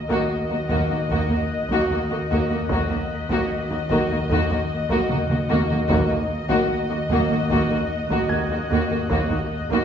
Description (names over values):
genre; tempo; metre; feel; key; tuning
cinematic, suspense film score; 75 BPM; 4/4; straight; Eb minor; A4 = 440 Hz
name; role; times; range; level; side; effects
muted symphonic violin section; melody; 0.0-9.8 s; Eb5; -29 LUFS; left 3 dB; none
analog drone; drone; 0.0-9.8 s; Eb2; -30 LUFS; equal; chorus
muted studio violin section; texture; 0.0-9.8 s; Eb6 to Bb6; -37 LUFS; left 5 dB; none
warm baby grand piano; texture; 0.0-9.8 s; Ab6; -34 LUFS; right 1 dB; none
muted symphonic violin section; second line; 0.1-9.8 s; Gb4; -26 LUFS; left 1 dB; none
muted symphonic viola section; accompaniment; 0.1-9.8 s; Bb3; -26 LUFS; right 2 dB; none
muted symphonic cello section; bass; 0.1-9.8 s; Eb2; -27 LUFS; right 2 dB; none
solo taiko drums; drums; 0.1-9.8 s; none; -30 LUFS; equal; none
muted studio double bass section; bass; 0.7-9.2 s; Eb2; -30 LUFS; right 1 dB; none
room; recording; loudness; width
wet recital hall reverb, RT60 1.7 s; recorded in a church or concert hall, nothing above 7.8 kHz; -20 LUFS; side -8 dB against mid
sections
0.0-9.8 A section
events
drum fill 5.1-5.9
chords
0.0 Ebm